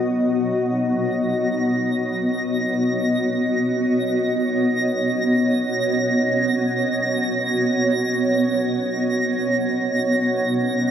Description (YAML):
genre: ambient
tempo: free time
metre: none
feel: none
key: B major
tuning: A4 = 440 Hz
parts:
  - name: granular cloud pad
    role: sustained chords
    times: 0.0-10.9 s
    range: B3 to D#5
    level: -19 LUFS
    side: equal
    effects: built-in reverb, shimmer reverb
  - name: twinkling granular texture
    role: texture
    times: 1.2-10.9 s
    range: A#6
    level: -26 LUFS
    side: right 2 dB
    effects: built-in reverb, shimmer reverb
room: wet cathedral reverb, RT60 6.5 s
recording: none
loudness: -18 LUFS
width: side -9 dB against mid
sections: 0.4-10.9 A section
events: none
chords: 0.4 Bmaj7